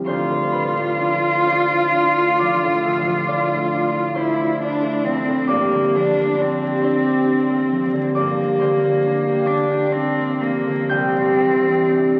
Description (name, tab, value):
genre	classical, impressionist duo for cello and harp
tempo	39-48 BPM (dotted quarters)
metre	12/8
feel	rubato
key	D minor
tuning	A4 = 440 Hz
part	concert harp	accompaniment	0.0-12.2 s	C2 to G6	-22 LUFS	equal	none
part	rich cello	melody	0.1-12.2 s	Bb3 to F4	-22 LUFS	equal	none
room	wet cathedral reverb, RT60 4.8 s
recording	very old 78 rpm record, vinyl crackle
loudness	-19 LUFS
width	mono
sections	0.1-12.2 A section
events	none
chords	0.1 Dm9; 5.5 Gm7; 10.9 Cadd9